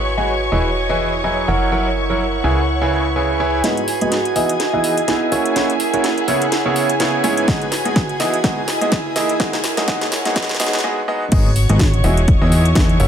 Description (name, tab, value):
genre	piano house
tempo	125 BPM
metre	4/4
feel	swing 57% on 16ths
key	G# minor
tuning	A4 = 440 Hz
part	warm studio string section	sustained chords	0.0-13.1 s	G#4 to C#6	-24 LUFS	equal	sidechain pumping, low-pass filter
part	plucky analog bass	bass	0.0-3.6, 11.3-13.1 s	E1 to E2	-18 LUFS	equal	sidechain pumping
part	airy breathy pad	texture	0.0-13.1 s	E4 to G#5	-22 LUFS	right 3 dB	chorus, sidechain pumping
part	bright concert grand piano	riff	0.2-13.1 s	G#2 to G#5	-20 LUFS	right 1 dB	sidechain pumping, low-pass filter, tape echo
part	house drum kit	drums	3.6-13.1 s	crash cymbal, hi-hat, snare drum	-23 LUFS	equal	overdrive, high-pass filter on snare, high-pass filter on hats, high-pass filter on cymbals, high-pass filter on room
part	electronic kick drum	drums	7.5-12.9 s	none	-17 LUFS	equal	overdrive
room	moderate plate reverb, RT60 1.1 s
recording	high-pass filter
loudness	-15 LUFS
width	side -8 dB against mid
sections	0.0-3.6 A section; 3.6-11.3 B section; 11.3-13.1 C section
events	build-up 3.6-11.3; drum fill 3.6-10.8; filter sweep on grand piano 3.6-11.3; filter sweep 3.6-11.3; break 10.8-11.3; drop 11.3-13.1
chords	0.0 G#m7; 0.5 Emaj7; 1.5 F#7; 2.4 C#m7; 3.6 G#m7; 4.4 Emaj7; 5.3 F#7; 6.3 C#m7; 7.5 G#m7; 8.2 Emaj7; 9.2 F#7; 10.1 C#m7; 11.3 G#m7; 12.0 Emaj7